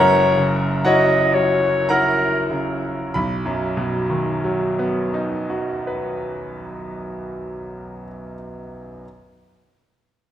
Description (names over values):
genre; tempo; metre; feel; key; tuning
classical, romantic duo for clarinet and grand piano; 46-67 BPM; 3/4; rubato; B major; A4 = 441 Hz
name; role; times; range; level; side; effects
warm clarinet; melody; 0.0-2.5 s; A#4 to D#5; -18 LUFS; left 2 dB; none
bright grand piano; accompaniment; 0.0-9.1 s; F#1 to B5; -20 LUFS; right 1 dB; none
room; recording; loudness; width
wet recital hall reverb, RT60 1.5 s; none; -18 LUFS; side -11 dB against mid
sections
0.0-3.1 A section; 3.1-6.9 B section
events
slowing down 0.0-3.1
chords
0.0 F#7; 3.1 B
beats
0.85 1.89 | 3.14 4.41 5.66